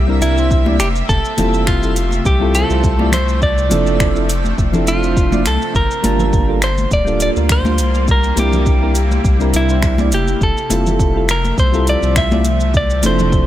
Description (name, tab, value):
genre	sunset chillout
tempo	103 BPM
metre	4/4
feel	swing 54% on 16ths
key	unclear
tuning	A4 = 439 Hz
part	clean electric guitar	melody	0.0-13.5 s	E4 to E5	-20 LUFS	equal	digital delay
part	shimmering ambient pad	sustained chords	0.0-13.5 s	C3 to E5	-24 LUFS	equal	chorus, built-in reverb
part	round analog bass	bass	0.0-13.5 s	D1 to D2	-17 LUFS	equal	none
part	twinkling granular texture	texture	0.0-5.8 s	E5	-32 LUFS	right 3 dB	built-in reverb
part	soft electric-piano-like synth keys	accompaniment	0.1-13.5 s	F3 to A5	-21 LUFS	moving between left 3 dB and right 6 dB	chorus, auto-pan
part	smooth R&B drum kit	drums	0.2-13.5 s	finger snaps, hi-hat, shaker	-24 LUFS	right 1 dB	none
part	electronic kick drum	drums	0.5-13.4 s	none	-17 LUFS	equal	none
part	congas	percussion	0.7-13.3 s	none	-24 LUFS	left 2 dB	none
room	little or no reverb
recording	none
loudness	-12 LUFS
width	side -13 dB against mid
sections	0.0-5.8 A section; 5.8-13.5 A section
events	none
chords	0.0 C7; 0.8 Fmaj7; 3.4 Dm7/F; 5.8 Gm7; 7.8 C7; 10.1 Fmaj7; 12.7 Dm7